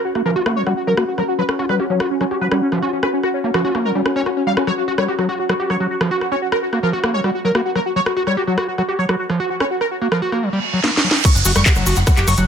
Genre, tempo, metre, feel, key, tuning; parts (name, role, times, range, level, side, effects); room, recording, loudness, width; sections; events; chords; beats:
psychedelic trance; 146 BPM; 4/4; straight; F# major; A4 = 439 Hz
warbly tape-like pad; texture; 0.0-10.4 s; C#4 to F#5; -26 LUFS; left 2 dB; chorus, built-in reverb, sidechain pumping
wide unison lead; melody; 0.1-12.4 s; C#4 to C#6; -21 LUFS; equal; phaser, cassette tape, sidechain pumping, dub echo
overdriven acid bass; riff; 0.2-12.4 s; E#3 to G4; -21 LUFS; moving between left 4 dB and right 3 dB; distortion, auto-pan, cassette tape, sidechain pumping, ping-pong delay
drum and bass drum kit; drums; 0.2-12.5 s; crash cymbal, handclaps, hi-hat, rim click, snare drum; -22 LUFS; equal
reverse cymbal and downlifter; sound effects; 10.5-12.5 s; -22 LUFS; right 4 dB
electronic kick drum; drums; 11.2-12.2 s; -13 LUFS; equal
egg shaker; percussion; 11.3-12.5 s; -26 LUFS; left 4 dB
plucky analog bass; bass; 11.4-12.4 s; F#1; -17 LUFS; equal
light reverb; -16 LUFS; side -7 dB against mid
0.0-11.2 A section; 11.2-12.5 B section
reverse cymbal 10.5-11.2; drum fill 10.8-11.2; drop 11.2-12.5
0.0 F#5
0.15 0.56 0.97 | 1.39 1.80 2.21 2.62 | 3.03 3.44 3.85 4.26 | 4.67 5.08 5.50 5.91 | 6.32 6.73 7.14 7.55 | 7.96 8.37 8.78 9.19 | 9.60 10.02 10.43 10.84 | 11.25 11.66 12.07